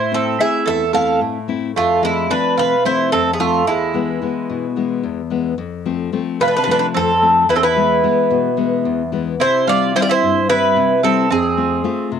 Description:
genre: greek folk, Greek bouzouki band.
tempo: 220 BPM (eighths).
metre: 7/8.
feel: straight.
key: unclear.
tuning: A4 = 439 Hz.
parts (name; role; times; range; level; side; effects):
Greek bouzouki; melody; 0.0-12.1 s; E4 to F5; -17 LUFS; left 1 dB; cassette tape.
mandolin; second line; 0.0-12.1 s; G#3 to A4; -19 LUFS; right 10 dB; cassette tape.
nylon-string guitar; accompaniment; 0.0-12.2 s; E2 to F4; -20 LUFS; left 8 dB; cassette tape.
room: moderate spring reverb, RT60 1.5 s, small room ambience.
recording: home recording on cassette.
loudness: -14 LUFS.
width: side -7 dB against mid.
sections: 0.0-5.6 A section; 5.6-12.2 B section.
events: none.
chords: 0.0 Am; 1.8 F; 3.7 E; 5.6 F; 7.5 E; 9.4 C; 11.3 F.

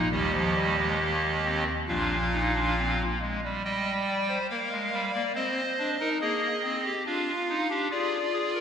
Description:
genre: classical, baroque-style 4-part fugue for pipe organ.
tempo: 70 BPM.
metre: 4/4.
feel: straight.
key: Eb major.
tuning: A4 = 440 Hz.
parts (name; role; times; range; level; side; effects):
pipe organ, clarinet reed; solo; 0.0-8.6 s; Bb1 to G5; -25 LUFS; equal; none.
room: wet church reverb, RT60 2.6 s.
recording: recorded in a church or concert hall.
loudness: -25 LUFS.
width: side -7 dB against mid.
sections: 0.0-3.6 A section; 3.6-8.6 B section.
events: none.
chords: 0.1 Bbsus4/Eb; 1.9 Bb; 3.6 Eb/G; 5.3 Ab/C; 7.1 Bb7/D (rootless).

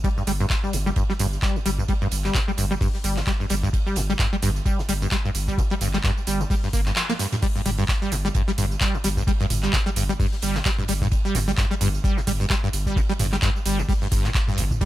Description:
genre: acid house.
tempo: 130 BPM.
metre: 4/4.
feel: swing 56% on 16ths.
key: unclear.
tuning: A4 = 441 Hz.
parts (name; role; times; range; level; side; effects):
acid bass, saw; riff; 0.0-14.9 s; G1 to Bb3; -25 LUFS; equal; tube saturation, ensemble chorus, tape echo.
booming analog drum machine; drums; 0.0-14.9 s; crash cymbal, handclaps, hi-hat, tambourine, toms; -28 LUFS; right 1 dB; overdrive.
damped 70s drum kit; drums; 0.0-14.9 s; hi-hat, ride cymbal, snare drum; -39 LUFS; right 4 dB; sidechain pumping on cymbals, high-pass filter on cymbals, sidechain pumping on hats, high-pass filter on hats, high-pass filter on snare, high-pass filter on room.
electronic kick drum; drums; 0.0-14.9 s; none; -24 LUFS; equal; overdrive.
saturated sub bass; bass; 0.3-14.8 s; G1; -27 LUFS; equal; sidechain pumping.
room: little or no reverb.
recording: none.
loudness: -20 LUFS.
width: side -14 dB against mid.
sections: 0.0-7.4 A section; 7.4-14.9 B section.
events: kick drops out 7.0-7.4; drum fill 7.0-7.4; band accent 7.0; drop 7.4-14.9.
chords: none.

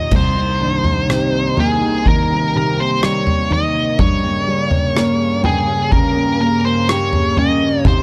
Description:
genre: pop ballad.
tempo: 62 BPM.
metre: 4/4.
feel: straight.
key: unclear.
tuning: A4 = 440 Hz.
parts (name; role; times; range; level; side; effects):
high-gain lead guitar; melody; 0.0-8.0 s; Ab4 to Eb5; -21 LUFS; equal; distortion.
warm concert grand piano; accompaniment; 0.0-8.0 s; C2 to G5; -22 LUFS; equal; none.
picked steel-string acoustic guitar; arpeggios; 0.0-8.0 s; C3 to G4; -29 LUFS; equal; none.
warm analog pad; sustained chords; 0.1-8.0 s; G2 to Eb4; -24 LUFS; equal; chorus.
unplugged drum kit; drums; 0.1-8.0 s; crash cymbal, kick drum, rim click, toms; -20 LUFS; equal; none.
room: light reverb, studio ambience.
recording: dark, warm production.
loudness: -16 LUFS.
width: mono.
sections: 0.1-8.0 A section.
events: none.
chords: 0.1 Cm7; 4.0 Gdim.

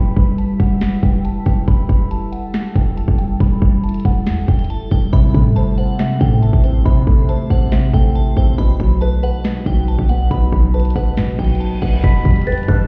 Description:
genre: hip hop, trap.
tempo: 139 BPM.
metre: 4/4.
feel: half-time.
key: E harmonic minor.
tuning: A4 = 440 Hz.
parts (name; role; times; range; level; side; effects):
glassy synth bell; melody; 0.0-12.9 s; F#5 to B6; -32 LUFS; equal; chorus, phaser, low-pass filter, digital delay.
glassy FM pad; sustained chords; 0.0-12.0 s; F#3 to C5; -27 LUFS; equal; ensemble chorus, built-in reverb.
clean 808-style bass; bass; 0.0-12.9 s; E1 to B2; -20 LUFS; equal; none.
trap drum kit; drums; 0.2-12.8 s; crash cymbal, hi-hat, kick drum, snare drum; -18 LUFS; equal; none.
felt-muted upright piano; accompaniment; 5.1-12.9 s; B2 to C5; -24 LUFS; equal; low-pass filter.
reverse cymbal and impact; sound effects; 11.5-12.9 s; none; -31 LUFS; equal; none.
breathy hollow jazz flute; second line; 12.0-12.9 s; G5 to B5; -33 LUFS; equal; digital delay.
chorused polysynth; stabs; 12.7-12.8 s; G2 to E3; -20 LUFS; equal; none.
room: digital ambience.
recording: heard muffled through a wall, stone room reverb, EQ.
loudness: -16 LUFS.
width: mono.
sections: 0.0-12.0 A section.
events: filter sweep 0.0-5.1; reverse cymbal 11.5-12.0; impact 12.0-12.9.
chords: 0.0 Em; 5.1 Am; 8.6 B; 12.0 Em.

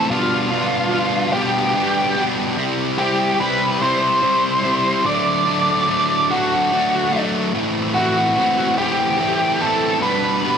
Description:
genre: rock.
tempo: 48 BPM (dotted quarters).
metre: 6/8.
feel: straight.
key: unclear.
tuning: A4 = 440 Hz.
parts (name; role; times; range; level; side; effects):
octave-fuzz lead guitar; melody; 0.0-10.6 s; F4 to D5; -18 LUFS; equal; distortion, analog delay.
fuzz guitar; riff; 0.0-10.6 s; A2 to E4; -19 LUFS; equal; distortion.
room: light reverb, digital ambience.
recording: none.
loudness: -16 LUFS.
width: side -7 dB against mid.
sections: 0.0-10.6 A section.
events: none.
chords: 0.1 G7/B; 2.6 C; 5.1 D; 7.5 Am7; 10.0 G/B.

